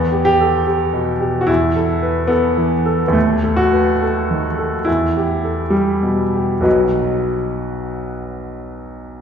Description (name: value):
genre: classical, romantic character piece for solo piano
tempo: 61-75 BPM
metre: 4/4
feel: rubato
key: E minor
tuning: A4 = 439 Hz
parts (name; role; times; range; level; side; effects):
- clear baby grand piano; solo; 0.0-9.2 s; B1 to D#5; -15 LUFS; equal; none
room: wet concert hall reverb, RT60 2.3 s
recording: heard from further back in the room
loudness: -15 LUFS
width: side -7 dB against mid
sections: 0.0-9.2 A section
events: none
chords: 0.0 Em; 1.5 Esus4; 3.1 B7/D#; 4.9 Em; 6.7 B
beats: 0.68 1.49 2.30 | 3.15 4.02 4.87 5.72 | 6.65 7.59 8.49